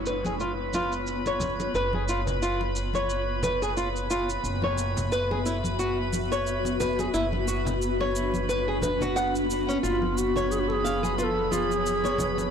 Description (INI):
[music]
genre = organic downtempo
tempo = 89 BPM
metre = 4/4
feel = swing 56% on 16ths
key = unclear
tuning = A4 = 440 Hz
[part]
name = granular cloud pad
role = sustained chords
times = 0.0-12.5 s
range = E#3 to E5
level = -31 LUFS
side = left 2 dB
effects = built-in reverb, vintage 12-bit sampler grit
[part]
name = flamenco guitar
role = arpeggios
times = 0.0-12.5 s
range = C#4 to F#5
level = -28 LUFS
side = equal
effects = low-pass filter, ping-pong delay
[part]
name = upright bass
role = bass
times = 0.0-12.5 s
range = F#1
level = -32 LUFS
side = equal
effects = transformer saturation
[part]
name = drifting glass-harmonics texture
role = texture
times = 0.0-12.5 s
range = B4 to B5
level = -34 LUFS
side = equal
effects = chorus, built-in reverb
[part]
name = shaker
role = drums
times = 0.1-12.5 s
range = none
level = -39 LUFS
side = right 2 dB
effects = low-pass filter on perc, low-pass filter on snare, low-pass filter on room
[part]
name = congas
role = percussion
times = 0.2-12.5 s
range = none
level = -36 LUFS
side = left 2 dB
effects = none
[part]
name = bass bansuri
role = melody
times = 9.8-12.5 s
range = E#4 to B4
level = -28 LUFS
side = equal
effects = tape echo
[sound]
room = moderate huge ambient reverb, RT60 8.9 s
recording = blown-out, overdriven recording, overdrive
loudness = -24 LUFS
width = side -7 dB against mid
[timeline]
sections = 0.0-12.5 A section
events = filter sweep on ambient pad 0.0-12.5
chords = 0.0 C#7/F#; 4.4 D69/F#; 9.8 C#7/F#